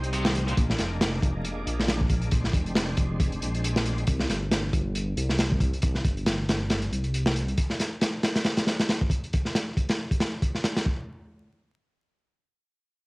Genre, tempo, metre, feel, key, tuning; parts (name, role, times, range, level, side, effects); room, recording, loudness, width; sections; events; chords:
breakbeat, breaks; 137 BPM; 4/4; swing 56% on 16ths; C minor; A4 = 439 Hz
bright tonewheel organ; sustained chords; 0.0-4.1 s; C3 to Eb4; -35 LUFS; equal; overdrive, chorus vibrato, slow rotary speaker, sidechain pumping, cassette tape
dark detuned saw bass; bass; 0.0-7.5 s; F1 to C2; -28 LUFS; equal; tube saturation
crunchy breakbeat drum kit; drums; 0.0-11.0 s; hi-hat, kick drum, snare drum; -25 LUFS; equal
tight distorted guitar; riff; 0.1-0.5 s; Bb2 to Eb3; -34 LUFS; equal; distortion, tube saturation, low-pass filter, cassette tape, analog delay
light reverb; home recording on cassette, vinyl crackle; -24 LUFS; side -26 dB against mid
0.0-11.1 A section; 11.1-13.1 B section
0.0 Cm7; 0.6 Bb7; 4.1 C5; 7.6 N.C.